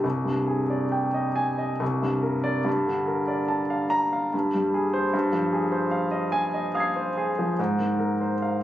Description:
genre	classical, impressionist solo piano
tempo	67-76 BPM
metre	3/4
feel	rubato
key	unclear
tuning	A4 = 440 Hz
part	warm concert grand piano	solo	0.0-8.6 s	C2 to C7	-23 LUFS	equal	none
room	light reverb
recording	recorded on a phone in the room, club reverb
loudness	-23 LUFS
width	side -13 dB against mid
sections	0.0-8.6 A section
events	none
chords	0.0 Abmaj7#11/C; 1.8 Bb69/C; 2.7 Gm9; 4.3 Abmaj7/G; 5.1 Fm7/G; 7.6 Ab69

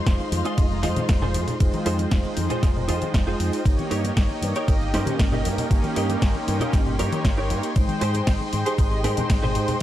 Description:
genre	nu-disco, nu disco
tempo	117 BPM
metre	4/4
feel	straight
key	unclear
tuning	A4 = 440 Hz
part	mellow synth brass	accompaniment	0.0-9.8 s	Ab3 to G5	-28 LUFS	right 1 dB	chorus, cassette tape, sidechain pumping, dub echo
part	dark studio string section	sustained chords	0.0-9.8 s	Ab3 to C6	-32 LUFS	left 3 dB	sidechain pumping
part	direct-recorded clean electric guitar	riff	0.1-9.7 s	Eb4 to Eb5	-29 LUFS	right 2 dB	ensemble chorus, dub echo
part	fingered electric bass with an envelope filter	bass	0.1-9.7 s	F1 to Ab2	-26 LUFS	equal	none
part	electronic kick drum	drums	0.1-9.4 s	none	-21 LUFS	equal	none
part	house drum kit	drums	0.1-9.8 s	hi-hat, ride cymbal, snare drum	-32 LUFS	equal	none
part	cabasa and congas	percussion	0.1-9.8 s	none	-32 LUFS	left 3 dB	none
room	digital ambience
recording	dark, warm production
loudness	-20 LUFS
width	side -13 dB against mid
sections	0.0-9.8 A section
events	none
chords	0.0 Fm7; 3.7 Eb7/G; 7.8 Abmaj7

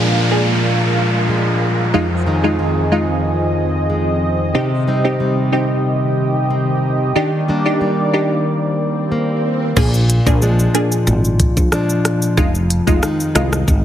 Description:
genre	dancehall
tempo	92 BPM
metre	4/4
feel	straight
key	unclear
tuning	A4 = 440 Hz
part	wavetable chord stab	accompaniment	0.0-13.7 s	Ab3 to Ab4	-20 LUFS	equal	none
part	lush unison pad	sustained chords	0.0-9.7 s	Eb3 to F5	-21 LUFS	right 1 dB	chorus, sidechain pumping
part	nylon-string guitar	arpeggios	0.0-13.8 s	F2 to Eb4	-17 LUFS	left 1 dB	ping-pong delay
part	downlifter and swell	sound effects	0.0-9.8 s	none	-24 LUFS	right 1 dB	none
part	woody fretless electric bass	bass	9.8-13.8 s	F1 to C2	-18 LUFS	equal	none
part	afro-pop drum kit	drums	9.8-13.8 s	crash cymbal, hi-hat, kick drum, rim click, shaker	-17 LUFS	equal	none
room	light reverb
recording	heavily compressed radio sound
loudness	-14 LUFS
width	side -10 dB against mid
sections	0.0-9.8 A section; 9.8-13.8 B section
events	swell 8.6-9.8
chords	0.0 Bb7; 1.9 Fm7; 4.5 Cm; 7.2 Ebmaj7; 9.8 Bb7; 12.4 Fm7

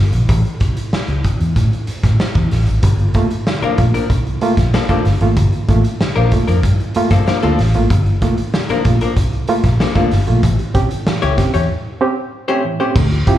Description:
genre	funk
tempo	95 BPM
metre	4/4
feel	straight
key	unclear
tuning	A4 = 440 Hz
part	vintage muted fingered electric bass	bass	0.0-13.2 s	G1 to A2	-15 LUFS	equal	none
part	raw garage drum kit	drums	0.1-13.4 s	crash cymbal, hi-hat, kick drum, snare drum	-17 LUFS	equal	none
part	barky reed electric piano	stabs	2.8-13.4 s	G2 to G4	-19 LUFS	right 4 dB	overdrive, fast tremolo, slapback echo
part	archtop guitar, miked and amplified	accompaniment	3.6-12.9 s	F3 to C#5	-20 LUFS	left 7 dB	slapback echo
room	studio reverb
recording	live gig heard through the venue's PA, club reverb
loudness	-13 LUFS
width	side -12 dB against mid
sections	0.0-13.0 A section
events	break 11.7-13.0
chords	0.3 A5; 2.8 Gm9; 10.4 A7#9

